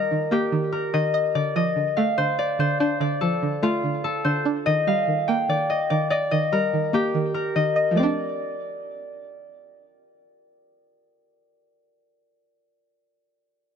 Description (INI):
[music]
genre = hip hop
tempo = 145 BPM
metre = 4/4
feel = half-time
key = D phrygian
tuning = A4 = 437 Hz
[part]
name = concert harp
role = melody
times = 0.0-9.8 s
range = F4 to G5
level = -23 LUFS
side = left 2 dB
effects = low-pass filter
[part]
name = string-like resonator pluck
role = accompaniment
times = 0.0-11.6 s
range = D3 to Eb5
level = -24 LUFS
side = right 2 dB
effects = chorus, low-pass filter
[sound]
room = light reverb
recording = none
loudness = -20 LUFS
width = side -7 dB against mid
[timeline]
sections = 0.0-8.0 A section; 8.0-11.3 B section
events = none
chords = 0.0 Eb; 1.4 Dm7; 4.7 Eb; 8.0 Dm7